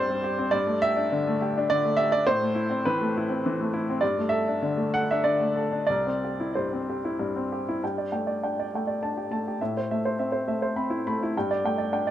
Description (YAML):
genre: neoclassical minimalist piano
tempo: 90-105 BPM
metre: 3/4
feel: rubato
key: G major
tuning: A4 = 441 Hz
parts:
  - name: clear upright piano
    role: solo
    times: 0.0-12.1 s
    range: C2 to B5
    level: -24 LUFS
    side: equal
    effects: none
room: wet spring reverb, RT60 1.5 s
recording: cassette tape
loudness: -24 LUFS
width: side -11 dB against mid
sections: 0.0-7.8 A section; 7.8-12.1 B section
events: none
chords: 0.0 C; 0.5 Gsus2; 2.3 Amadd9; 4.0 Gsus2; 5.9 C; 7.8 Gsus2; 9.6 Amadd9; 11.3 Gsus2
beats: | 0.53 1.11 1.69 | 2.26 2.84 3.43 | 4.02 4.61 5.23 | 5.87 6.53 7.18 | 7.82 8.43 9.01 | 9.60 10.19 10.77 | 11.35 11.92